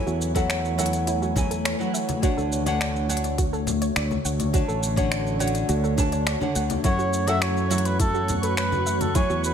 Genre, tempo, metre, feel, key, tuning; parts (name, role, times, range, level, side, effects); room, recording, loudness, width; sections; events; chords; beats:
sunset chillout; 104 BPM; 4/4; straight; F# minor; A4 = 440 Hz
nylon-string guitar; accompaniment; 0.0-9.5 s; D3 to A5; -28 LUFS; equal; auto-pan, vintage 12-bit sampler grit, ping-pong delay
shimmering ambient pad; sustained chords; 0.0-9.5 s; D3 to G#5; -29 LUFS; equal; chorus, built-in reverb
soft round pluck; arpeggios; 0.0-9.4 s; E4 to F#5; -33 LUFS; right 5 dB; chorus, ping-pong delay
fingered electric bass; bass; 0.1-9.5 s; A1 to F#2; -26 LUFS; equal
smooth R&B drum kit; drums; 0.1-9.5 s; finger snaps, hi-hat, shaker; -30 LUFS; left 1 dB; overdrive, studio reverb
electronic kick drum; drums; 0.4-9.3 s; -24 LUFS; equal; overdrive, studio reverb
congas; percussion; 1.4-9.1 s; -33 LUFS; left 3 dB
drifting glass-harmonics texture; texture; 7.2-9.5 s; F#4 to F#5; -36 LUFS; right 4 dB; chorus, built-in reverb
trumpet with cup mute; melody; 6.9-9.5 s; A4 to E5; -26 LUFS; equal; tape echo
light reverb, digital ambience; -21 LUFS; side -8 dB against mid
0.0-9.5 A section
0.0 F#m7; 2.2 Dmaj7; 6.8 F#m7
0.50 1.08 1.65 | 2.23 2.81 3.38 3.96 | 4.54 5.11 5.69 6.27 | 6.84 7.42 8.00 8.58 | 9.15